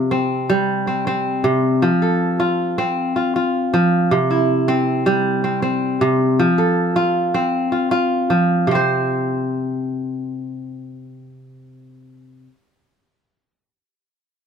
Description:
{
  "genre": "west african traditional",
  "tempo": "105 BPM (dotted quarters)",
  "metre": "12/8",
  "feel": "straight",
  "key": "unclear",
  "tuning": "A4 = 440 Hz",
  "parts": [
    { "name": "kora", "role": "solo", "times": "0.0-12.5 s", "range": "C3 to C5", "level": "-16 LUFS", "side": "equal", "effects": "none" }
  ],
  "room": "light reverb",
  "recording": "close, detailed microphones",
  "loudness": "-16 LUFS",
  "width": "side -7 dB against mid",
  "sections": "0.0-8.7 A section; 8.7-11.0 B section",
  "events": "none",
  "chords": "0.0 C5; 1.8 F; 4.1 C; 6.4 F; 8.7 N.C."
}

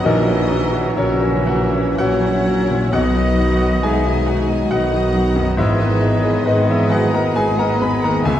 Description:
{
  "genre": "classical, romantic movement for piano and orchestra",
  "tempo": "56-70 BPM",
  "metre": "3/4",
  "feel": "rubato",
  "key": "unclear",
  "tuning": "A4 = 444 Hz",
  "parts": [
    { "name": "clear baby grand piano", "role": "melody", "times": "0.0-8.4 s", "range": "A#1 to B5", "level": "-20 LUFS", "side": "left 2 dB", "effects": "none" },
    { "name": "rich studio violin section", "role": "melody", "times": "0.0-8.4 s", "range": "A#4 to F#5", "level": "-32 LUFS", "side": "left 4 dB", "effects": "none" },
    { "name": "clear oboe", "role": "second line", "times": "0.0-8.4 s", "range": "D#5 to E5", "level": "-30 LUFS", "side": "right 1 dB", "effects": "none" },
    { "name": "hollow concert flute", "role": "second line", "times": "0.0-8.4 s", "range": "A#4 to G#5", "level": "-29 LUFS", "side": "left 2 dB", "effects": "none" },
    { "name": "mellow clarinet", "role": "second line", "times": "0.0-8.4 s", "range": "F#4 to G#4", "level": "-27 LUFS", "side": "equal", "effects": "none" },
    { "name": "rich studio violin section", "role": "second line", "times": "0.0-8.4 s", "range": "C#5 to B5", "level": "-31 LUFS", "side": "left 2 dB", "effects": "none" },
    { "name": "clear studio viola section", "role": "accompaniment", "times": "0.0-8.4 s", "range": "G#3 to B4", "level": "-28 LUFS", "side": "right 1 dB", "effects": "none" },
    { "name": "warm bassoon", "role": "accompaniment", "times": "0.0-8.4 s", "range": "B3 to C#4", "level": "-29 LUFS", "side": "right 4 dB", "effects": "none" },
    { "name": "mellow French horn section", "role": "sustained chords", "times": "0.0-8.4 s", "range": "B3 to B4", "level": "-27 LUFS", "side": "left 4 dB", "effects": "none" },
    { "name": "warm trombone section", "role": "sustained chords", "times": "0.0-8.4 s", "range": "D#3 to G#3", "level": "-26 LUFS", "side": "right 2 dB", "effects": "none" },
    { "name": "clear studio double bass section", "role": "bass", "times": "0.0-8.4 s", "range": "G#1 to C#2", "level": "-22 LUFS", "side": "right 1 dB", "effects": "none" },
    { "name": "rich studio cello section", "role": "bass", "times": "0.0-8.4 s", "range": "C#3 to B3", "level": "-25 LUFS", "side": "right 2 dB", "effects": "none" },
    { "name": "warm tuba", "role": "bass", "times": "0.0-8.4 s", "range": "G#1 to C#2", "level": "-25 LUFS", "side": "right 2 dB", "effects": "none" }
  ],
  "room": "wet scoring stage reverb, RT60 1.6 s",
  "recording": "dark, warm production, vinyl crackle",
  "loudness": "-14 LUFS",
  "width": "side -11 dB against mid",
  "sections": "0.0-8.4 A section",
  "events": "none",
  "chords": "0.0 F#7/A#; 2.9 B; 5.6 G#m"
}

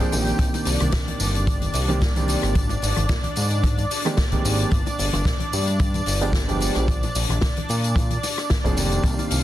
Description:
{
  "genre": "nu-disco, nu disco",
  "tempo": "111 BPM",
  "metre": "4/4",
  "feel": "swing 54% on 16ths",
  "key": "unclear",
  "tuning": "A4 = 438 Hz",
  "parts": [
    { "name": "warm baby grand piano", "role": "accompaniment", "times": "0.0-9.4 s", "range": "Eb3 to Ab4", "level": "-26 LUFS", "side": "right 2 dB", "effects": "sidechain pumping, dub echo" },
    { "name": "lush unison pad", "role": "sustained chords", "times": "0.0-9.4 s", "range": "D4 to G5", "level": "-29 LUFS", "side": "equal", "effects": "chorus, sidechain pumping" },
    { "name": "swinging big-band drum kit", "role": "drums", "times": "0.0-9.4 s", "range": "hi-hat, rim click, snare drum, tambourine", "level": "-28 LUFS", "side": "left 2 dB", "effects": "none" },
    { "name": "fat analog bass", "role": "bass", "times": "0.1-9.4 s", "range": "F1 to Bb2", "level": "-24 LUFS", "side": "equal", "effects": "tube saturation" },
    { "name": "tambourine, bongos and congas", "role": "percussion", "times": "0.1-9.4 s", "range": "none", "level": "-34 LUFS", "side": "left 2 dB", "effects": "none" },
    { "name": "kick drum", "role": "drums", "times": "0.4-9.2 s", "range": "none", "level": "-23 LUFS", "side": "equal", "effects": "none" }
  ],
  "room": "light reverb, studio ambience",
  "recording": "dense, heavily limited modern master, lossy compression artefacts",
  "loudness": "-19 LUFS",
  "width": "side -13 dB against mid",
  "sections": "0.0-9.4 A section",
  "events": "none",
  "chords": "0.4 Cm7; 2.6 Abmaj7; 4.7 G7b9; 6.9 Bb"
}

